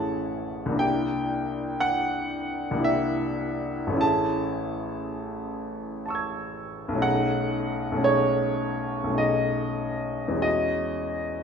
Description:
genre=classical, impressionist solo piano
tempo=46-60 BPM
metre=3/4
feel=rubato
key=unclear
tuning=A4 = 440 Hz
part: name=clear baby grand piano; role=solo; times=0.0-11.4 s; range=A1 to G#6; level=-24 LUFS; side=equal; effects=none
room=moderate recital hall reverb, RT60 1.8 s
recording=minimal, uncompressed stereo recording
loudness=-24 LUFS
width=side -6 dB against mid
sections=0.0-11.4 A section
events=none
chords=0.0 Amaj7; 0.8 C9; 4.0 Amaj7; 7.1 B13; 10.5 E69

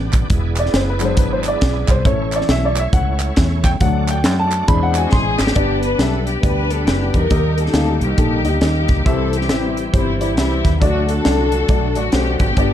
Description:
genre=uptempo gospel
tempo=137 BPM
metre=4/4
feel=swing 62% on 8ths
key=G major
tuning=A4 = 440 Hz
part: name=warm grand piano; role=accompaniment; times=0.0-12.7 s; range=G2 to C6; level=-21 LUFS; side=left 2 dB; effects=none
part: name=bright tonewheel organ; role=sustained chords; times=0.0-12.7 s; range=D3 to D5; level=-27 LUFS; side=right 4 dB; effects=slow rotary speaker, overdrive, chorus vibrato
part: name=fingered electric bass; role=bass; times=0.0-12.7 s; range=E1 to F#2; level=-20 LUFS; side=equal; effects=none
part: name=crisp fusion drum kit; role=drums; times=0.1-12.7 s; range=hi-hat, kick drum, snare drum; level=-18 LUFS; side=equal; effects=none
part: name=group handclap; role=percussion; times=0.1-5.5 s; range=none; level=-28 LUFS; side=right 4 dB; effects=none
part: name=muted studio string section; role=melody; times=5.0-12.7 s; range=G3 to B4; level=-21 LUFS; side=left 3 dB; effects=none
room=little or no reverb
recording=dark, warm production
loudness=-14 LUFS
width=side -10 dB against mid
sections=0.0-5.6 A section; 5.6-12.7 B section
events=grand piano solo 0.0-5.6; drum fill 5.1-5.6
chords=0.3 E7; 2.1 A; 3.8 D; 4.7 E7b13; 5.6 G; 7.3 Eb; 9.1 C; 10.8 D

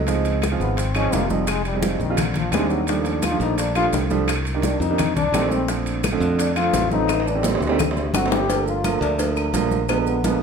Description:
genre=Afro-Cuban jazz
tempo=171 BPM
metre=4/4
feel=straight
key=Bb major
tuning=A4 = 440 Hz
part: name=modern bright fingered electric bass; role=bass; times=0.0-10.4 s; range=F1 to F2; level=-24 LUFS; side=left 1 dB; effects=none
part: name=warm grand piano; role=accompaniment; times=0.1-10.4 s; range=D3 to F4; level=-24 LUFS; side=right 6 dB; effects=none
part: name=bongos and cowbell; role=percussion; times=0.1-10.4 s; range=none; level=-30 LUFS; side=left 7 dB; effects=none
part: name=congas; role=percussion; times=0.1-10.4 s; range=none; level=-28 LUFS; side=left 2 dB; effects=none
part: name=maracas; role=percussion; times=0.1-10.4 s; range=none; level=-36 LUFS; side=right 5 dB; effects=none
part: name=timbales and agogo bells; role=percussion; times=0.1-10.4 s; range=none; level=-30 LUFS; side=right 4 dB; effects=none
part: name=claves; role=percussion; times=0.4-10.1 s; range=none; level=-34 LUFS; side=left 5 dB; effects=none
part: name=warm trombone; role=second line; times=0.6-10.4 s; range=D3 to G4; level=-25 LUFS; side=left 6 dB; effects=none
room=moderate large studio reverb, RT60 1.2 s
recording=band playing live in one room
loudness=-18 LUFS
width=side -6 dB against mid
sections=0.0-8.5 A section; 8.5-10.4 A section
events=trombone solo 0.0-10.4; drum fill 7.1-8.5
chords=0.1 Dbmaj9; 1.5 Fm7; 2.2 Bb13; 2.9 Ebmaj9#11; 4.3 Cm9; 5.0 F9; 5.7 Bbmaj9; 7.1 Am7b5; 7.8 D7; 8.5 Gm9; 9.9 Bb7b9

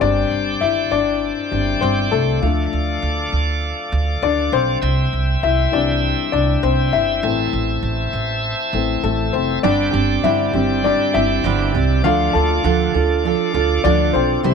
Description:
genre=pop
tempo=100 BPM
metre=4/4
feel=swing 56% on 16ths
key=unclear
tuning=A4 = 440 Hz
part: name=warm baby grand piano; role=accompaniment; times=0.0-14.5 s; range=D3 to A5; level=-19 LUFS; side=left 10 dB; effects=none
part: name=bright tonewheel organ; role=sustained chords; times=0.0-14.5 s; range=G4 to E6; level=-24 LUFS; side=right 2 dB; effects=slow rotary speaker
part: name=upright bass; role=bass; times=0.0-14.5 s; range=F1 to D2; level=-21 LUFS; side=right 2 dB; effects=none
part: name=fingerpicked steel-string acoustic guitar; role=riff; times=9.6-14.5 s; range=G2 to C5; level=-19 LUFS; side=right 14 dB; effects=none
room=light reverb, small room ambience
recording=1960s-style stereo with parts hard left and right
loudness=-16 LUFS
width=side -6 dB against mid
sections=0.0-14.5 A section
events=grand piano solo 0.0-14.5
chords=0.0 Gsus4; 2.4 Dm; 4.8 C; 7.2 Am; 9.6 Gsus4; 12.0 Dm

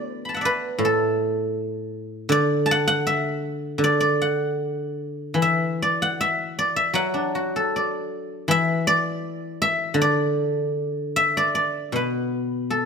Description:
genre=chinese traditional, Chinese solo plucked strings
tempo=73-82 BPM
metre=2/4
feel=rubato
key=D gong mode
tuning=A4 = 440 Hz
part: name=guzheng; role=solo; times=0.0-12.9 s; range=A2 to B5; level=-21 LUFS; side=equal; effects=none
room=light reverb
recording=close, detailed microphones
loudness=-20 LUFS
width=side -6 dB against mid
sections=0.0-11.5 A section; 11.5-12.9 B section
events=none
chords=none

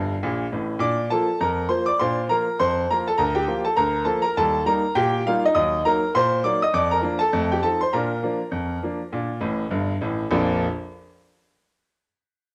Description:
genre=ragtime piano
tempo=101 BPM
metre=2/4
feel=swing 56% on 16ths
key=Bb major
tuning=A4 = 440 Hz
part: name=bright grand piano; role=solo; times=0.0-10.7 s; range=G1 to Eb6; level=-22 LUFS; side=equal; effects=cassette tape
room=wet spring reverb, RT60 1.2 s, small room ambience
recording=home recording on cassette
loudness=-22 LUFS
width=mono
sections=0.0-10.3 A section; 10.3-11.5 B section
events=grand piano fill 0.0-0.8, 9.4-10.3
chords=0.0 F; 0.8 Bb; 3.2 Bb/D; 4.4 Eb; 5.6 Ebm; 6.7 Bb/F; 7.3 F7; 7.9 Bb

